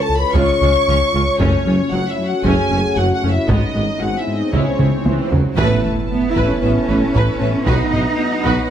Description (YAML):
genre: cinematic, hybrid orchestral and electronic film score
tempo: 115 BPM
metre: 4/4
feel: straight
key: unclear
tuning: A4 = 441 Hz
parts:
  - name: rich symphonic violin section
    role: melody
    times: 0.0-8.7 s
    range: C#5 to C#6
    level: -28 LUFS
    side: left 3 dB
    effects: none
  - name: warm symphonic violin section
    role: second line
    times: 0.0-8.7 s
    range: F#4 to C#6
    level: -25 LUFS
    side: left 1 dB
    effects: none
  - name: analog drone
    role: sustained chords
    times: 0.0-8.7 s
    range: F#3 to C#5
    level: -24 LUFS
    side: equal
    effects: chorus
  - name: dark French horn section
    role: sustained chords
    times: 0.0-7.8 s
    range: C#4 to E5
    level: -22 LUFS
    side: left 4 dB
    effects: none
  - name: smooth synth bass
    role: riff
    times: 0.1-8.6 s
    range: C#2 to A3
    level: -22 LUFS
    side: left 1 dB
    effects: none
  - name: mellow tuba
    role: bass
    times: 0.3-8.6 s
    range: F#1 to C#2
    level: -25 LUFS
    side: right 4 dB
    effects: none
  - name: rich symphonic double bass section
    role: bass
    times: 0.3-8.5 s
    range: F#1 to C#2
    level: -24 LUFS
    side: right 3 dB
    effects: none
  - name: taiko ensemble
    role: drums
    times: 0.3-8.7 s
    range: none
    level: -21 LUFS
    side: equal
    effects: none
  - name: rich symphonic viola section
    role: accompaniment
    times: 0.4-8.7 s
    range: D#3 to B4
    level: -25 LUFS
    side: right 1 dB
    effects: none
  - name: warm studio cello section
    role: bass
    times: 0.4-8.7 s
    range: F#2 to E4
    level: -23 LUFS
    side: right 3 dB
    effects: none
  - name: swell and impact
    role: sound effects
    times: 3.9-7.7 s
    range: none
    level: -27 LUFS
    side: right 1 dB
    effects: none
  - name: warm trombone section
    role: sustained chords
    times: 5.6-7.8 s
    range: E3 to B3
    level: -29 LUFS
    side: right 6 dB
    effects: none
room: light reverb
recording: close, detailed microphones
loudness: -14 LUFS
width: side -9 dB against mid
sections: 0.0-5.6 A section; 5.6-8.7 B section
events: swell 3.9-5.6; drum fill 4.8-5.6; band accent 5.6-6.1; impact 5.6-7.7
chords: 0.0 C#; 1.4 F#m; 3.5 G#m; 4.5 C#m; 5.6 Aadd9; 7.7 B